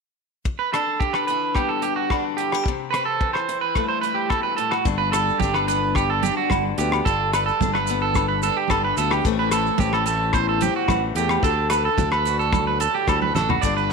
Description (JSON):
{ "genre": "highlife guitar band", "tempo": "109 BPM", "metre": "4/4", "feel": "straight", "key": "G major", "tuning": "A4 = 442 Hz", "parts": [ { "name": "picked steel-string acoustic guitar", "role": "accompaniment", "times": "0.5-13.9 s", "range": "E2 to A4", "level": "-27 LUFS", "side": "left 14 dB", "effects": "none" }, { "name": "damped 70s drum kit", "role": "drums", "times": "0.5-13.8 s", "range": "hi-hat, kick drum, rim click, snare drum, toms", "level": "-27 LUFS", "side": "left 1 dB", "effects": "none" }, { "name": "electric guitar at the edge of break-up", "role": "arpeggios", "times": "0.6-13.9 s", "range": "F#4 to D5", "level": "-22 LUFS", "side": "right 7 dB", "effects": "slapback echo" }, { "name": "agogo bells", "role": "percussion", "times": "0.7-13.6 s", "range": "none", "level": "-30 LUFS", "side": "left 16 dB", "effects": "none" }, { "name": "modern bright fingered electric bass", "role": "bass", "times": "4.9-13.9 s", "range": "G1 to E2", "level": "-26 LUFS", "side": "left 1 dB", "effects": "none" }, { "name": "congas", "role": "percussion", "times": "4.9-13.9 s", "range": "none", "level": "-30 LUFS", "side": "right 13 dB", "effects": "none" }, { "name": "maracas", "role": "percussion", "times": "4.9-13.8 s", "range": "none", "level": "-37 LUFS", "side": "right 16 dB", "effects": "none" } ], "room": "moderate echo chamber reverb, RT60 1.4 s, small room ambience", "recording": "1960s-style stereo with parts hard left and right", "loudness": "-19 LUFS", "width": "side -4 dB against mid", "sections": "0.5-4.9 A section; 4.9-13.6 B section", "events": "drum fill 13.1-13.6", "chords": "0.5 G; 2.7 C6; 4.9 G; 9.2 Am; 11.4 Dadd9" }